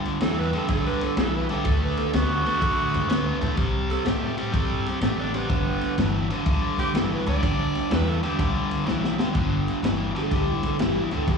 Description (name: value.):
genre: electric blues shuffle.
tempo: 125 BPM.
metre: 4/4.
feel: swing 67% on 8ths.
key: G major.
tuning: A4 = 438 Hz.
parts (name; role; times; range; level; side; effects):
biting overdriven guitar; riff; 0.0-11.4 s; G2 to B3; -26 LUFS; left 2 dB; slapback echo.
upright bass; bass; 0.0-11.4 s; G1 to A2; -28 LUFS; equal; none.
crunchy breakbeat drum kit; drums; 0.1-11.4 s; crash cymbal, kick drum, ride cymbal, snare drum; -27 LUFS; equal; none.
growling tenor saxophone; second line; 0.2-8.5 s; B3 to D5; -29 LUFS; right 5 dB; plate reverb, slapback echo.
electric slide guitar; melody; 10.2-11.4 s; E4 to A4; -28 LUFS; left 1 dB; slapback echo.
room: light reverb.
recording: live gig heard through the venue's PA, club reverb.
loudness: -22 LUFS.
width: side -5 dB against mid.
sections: 0.0-9.4 A section; 9.4-11.4 A section.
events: tenor saxophone solo 0.0-9.4; drum fill 8.9-9.4; electric slide guitar solo 9.4-11.4.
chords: 0.0 G; 1.7 D; 3.6 C5; 5.5 G.